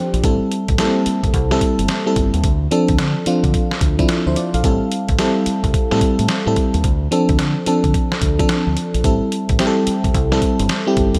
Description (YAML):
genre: R&B, new jack swing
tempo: 109 BPM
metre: 4/4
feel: swing 64% on 16ths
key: D minor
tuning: A4 = 440 Hz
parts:
  - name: FM electric piano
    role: accompaniment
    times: 0.0-11.2 s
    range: F3 to F5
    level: -20 LUFS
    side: equal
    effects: chorus
  - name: deep dub fingered electric bass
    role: bass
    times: 0.1-11.2 s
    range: G1 to D3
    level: -23 LUFS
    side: equal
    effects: none
  - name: dusty soul sampler-style drum kit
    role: drums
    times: 0.1-11.2 s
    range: hi-hat, kick drum, snare drum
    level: -22 LUFS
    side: equal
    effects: none
room: light reverb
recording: none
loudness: -17 LUFS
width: mono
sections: 0.0-11.2 A section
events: none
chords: 0.2 Am7; 2.4 Dm7; 4.6 Am7; 6.8 Dm7; 9.0 Am7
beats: | 0.23 0.79 1.34 1.89 | 2.44 2.99 3.54 4.09 | 4.64 5.19 5.74 6.29 | 6.84 7.39 7.94 8.49 | 9.04 9.59 10.14 10.69